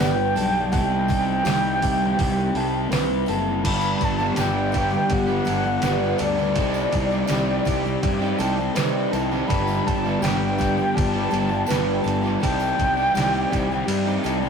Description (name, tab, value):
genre	rock, shoegaze and dream pop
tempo	82 BPM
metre	4/4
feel	straight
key	G major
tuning	A4 = 439 Hz
part	breathy bright concert flute	melody	0.0-13.9 s	D5 to B5	-25 LUFS	left 1 dB	slapback echo
part	hollow soft pad	sustained chords	0.0-14.5 s	B3 to G5	-31 LUFS	left 2 dB	chorus
part	electric guitar through a small old amp	arpeggios	0.0-14.5 s	G4 to B4	-29 LUFS	right 2 dB	none
part	overdriven semi-hollow guitar	riff	0.0-14.5 s	G2 to G4	-28 LUFS	right 5 dB	none
part	thick fuzz guitar	riff	0.0-14.5 s	G2 to C4	-28 LUFS	left 5 dB	distortion
part	fuzz fingered electric bass	bass	0.0-14.5 s	F#1 to C3	-28 LUFS	right 1 dB	overdrive
part	detuned 8-bit digital drum machine	drums	0.0-14.4 s	crash cymbal, hi-hat, kick drum, ride cymbal, snare drum	-27 LUFS	right 1 dB	none
part	tambourine	percussion	0.0-14.5 s	none	-45 LUFS	right 5 dB	none
room	moderate stone room reverb, RT60 1.0 s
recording	rough rehearsal-room recording, warm saturation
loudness	-19 LUFS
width	side -6 dB against mid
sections	0.0-3.6 A section; 3.6-14.5 B section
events	kick and snare drop out 13.9-14.5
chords	0.0 G; 0.7 Cm; 3.6 Gmaj7; 6.6 Cmadd9; 9.5 G; 12.4 Cmadd9